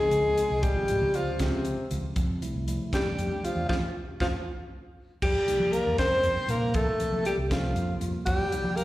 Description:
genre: electric jazz fusion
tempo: 78 BPM (dotted quarters)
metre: 6/8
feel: straight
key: F mixolydian from 5.2 s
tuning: A4 = 442 Hz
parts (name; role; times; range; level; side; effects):
- breathy alto saxophone; melody; 0.0-8.8 s; C4 to C5; -27 LUFS; equal; slapback echo, plate reverb
- breathy tenor saxophone; second line; 0.0-8.8 s; C3 to C4; -34 LUFS; left 1 dB; plate reverb, slapback echo
- mellow tine electric piano; accompaniment; 0.0-8.8 s; C3 to F4; -35 LUFS; equal; medium stereo tremolo, plate reverb, slapback echo
- mellow fretless electric bass; bass; 0.0-8.8 s; Ab1 to F3; -31 LUFS; equal; none
- crisp fusion drum kit; drums; 0.1-8.8 s; crash cymbal, hi-hat, kick drum, snare drum; -32 LUFS; equal; none
room: moderate club reverb, RT60 0.6 s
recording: live gig heard through the venue's PA, recital hall reverb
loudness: -25 LUFS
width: side -16 dB against mid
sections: 0.0-5.2 A section; 5.2-8.8 B section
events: band accent 3.7-5.2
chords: 0.0 Dbmaj7; 2.2 Fmaj9; 5.2 F9sus4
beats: | 0.63 1.40 | 2.16 2.93 | 3.69 4.46 | 5.22 5.98 | 6.75 7.51 | 8.27

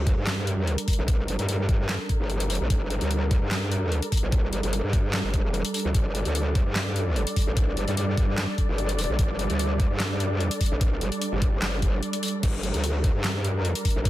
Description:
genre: heavy wobble dubstep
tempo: 148 BPM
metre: 4/4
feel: half-time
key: G minor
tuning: A4 = 440 Hz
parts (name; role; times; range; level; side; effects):
- muted studio string section; sustained chords; 0.0-14.1 s; G3 to D5; -31 LUFS; right 1 dB; sidechain pumping, low-pass filter
- growl bass; bass; 0.0-14.1 s; F1 to G2; -26 LUFS; equal; chorus, overdrive
- dubstep drum kit; drums; 0.1-14.1 s; crash cymbal, handclaps, hi-hat, snare drum; -31 LUFS; left 1 dB; overdrive, small room ambience
- electronic kick drum; drums; 0.1-14.1 s; none; -23 LUFS; equal; small room ambience
room: digital ambience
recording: dense, heavily limited modern master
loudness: -23 LUFS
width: side -15 dB against mid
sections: 0.0-14.1 A section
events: none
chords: 0.0 Gmadd9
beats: 0.27 0.68 | 1.08 1.49 1.89 2.30 | 2.70 3.11 3.51 3.92 | 4.32 4.73 5.13 5.54 | 5.95 6.35 6.76 7.16 | 7.57 7.97 8.38 8.78 | 9.19 9.59 10.00 10.40 | 10.81 11.21 11.62 12.03 | 12.43 12.84 13.24 13.65 | 14.05

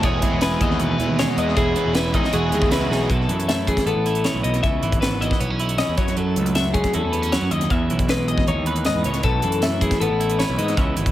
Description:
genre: math rock and midwest emo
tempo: 156 BPM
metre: 4/4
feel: straight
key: unclear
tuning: A4 = 439 Hz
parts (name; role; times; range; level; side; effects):
- twelve-string electric guitar; accompaniment; 0.0-11.1 s; E2 to B4; -24 LUFS; right 3 dB; tape echo
- twelve-string electric guitar; arpeggios; 0.0-11.1 s; G#4 to E5; -24 LUFS; left 5 dB; none
- biting overdriven guitar; riff; 0.0-3.1 s; E3 to E4; -27 LUFS; right 1 dB; tape echo
- fuzz picked electric bass; bass; 0.0-11.1 s; E1 to G#2; -24 LUFS; equal; overdrive
- crisp fusion drum kit; drums; 0.0-11.1 s; hi-hat, kick drum, snare drum; -24 LUFS; equal; tape echo
room: light reverb, studio ambience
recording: echo-heavy mix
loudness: -18 LUFS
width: side -13 dB against mid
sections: 0.0-3.1 A section; 3.1-11.1 B section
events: drum fill 2.9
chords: 0.0 C#m9/E; 2.3 Emaj9; 3.1 B7sus4; 4.6 C#m7; 6.0 F#m7; 7.7 Emaj7; 9.2 B7sus4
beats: | 0.04 0.42 0.80 1.19 | 1.57 1.95 2.34 2.72 | 3.10 3.49 3.87 4.26 | 4.64 5.02 5.41 5.79 | 6.17 6.56 6.94 7.33 | 7.71 8.09 8.48 8.86 | 9.24 9.63 10.01 10.39 | 10.78

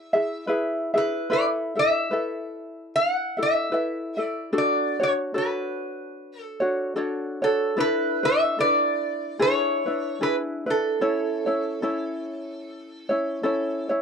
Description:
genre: Hawaiian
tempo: 74 BPM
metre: 4/4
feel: swing 57% on 8ths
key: A major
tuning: A4 = 440 Hz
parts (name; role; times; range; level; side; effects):
- lap resonator guitar; melody; 0.0-13.9 s; A4 to F#5; -24 LUFS; right 1 dB; none
- ukulele; accompaniment; 0.0-14.0 s; C#4 to E5; -25 LUFS; left 1 dB; none
room: moderate booth ambience, RT60 0.2 s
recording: none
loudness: -22 LUFS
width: side -6 dB against mid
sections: 0.0-14.0 A section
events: none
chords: 0.0 E; 1.3 Asus2; 4.5 Dmaj7; 7.8 E7sus4; 9.4 E7; 11.0 A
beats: 0.48 | 1.30 2.11 2.92 3.73 | 4.54 5.35 6.16 6.97 | 7.78 8.59 9.40 10.21 | 11.02 11.83 12.64 13.45

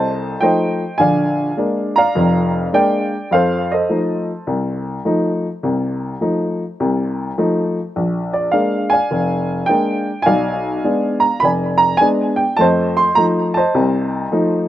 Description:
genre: solo jazz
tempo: 104 BPM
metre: 4/4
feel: swing 67% on 8ths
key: F mixolydian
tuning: A4 = 441 Hz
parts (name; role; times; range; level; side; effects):
- warm upright piano; solo; 0.0-14.7 s; F1 to C6; -15 LUFS; equal; slapback echo
room: little or no reverb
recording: recorded outdoors, with no room sound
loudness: -15 LUFS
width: side -13 dB against mid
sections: 0.0-14.7 A section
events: none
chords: 0.0 F7; 1.0 Bb7; 3.3 F7; 7.9 Bb7; 10.3 Bdim7; 12.6 F7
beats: 0.41 | 0.99 1.57 2.15 2.73 | 3.31 3.89 4.47 5.05 | 5.63 6.21 6.79 7.37 | 7.95 8.53 9.11 9.68 | 10.26 10.84 11.42 12.00 | 12.58 13.16 13.74 14.31

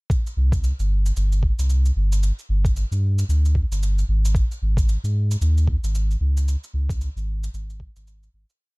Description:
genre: organic downtempo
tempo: 113 BPM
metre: 4/4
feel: swing 59% on 16ths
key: C minor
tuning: A4 = 440 Hz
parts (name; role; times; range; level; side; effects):
- cabasa; drums; 0.1-8.6 s; none; -39 LUFS; right 2 dB; none
- electronic kick drum; drums; 0.1-7.9 s; none; -22 LUFS; equal; none
- warm sub bass; bass; 0.4-8.4 s; G1 to Ab2; -19 LUFS; equal; sidechain pumping
room: little or no reverb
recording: dark, warm production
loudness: -19 LUFS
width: side -32 dB against mid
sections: 0.1-8.6 groove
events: fade-out 5.8-8.6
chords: none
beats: | 0.10 0.63 1.16 1.70 | 2.23 2.76 3.29 3.82 | 4.35 4.88 5.41 5.94 | 6.47 7.00 7.54 8.07

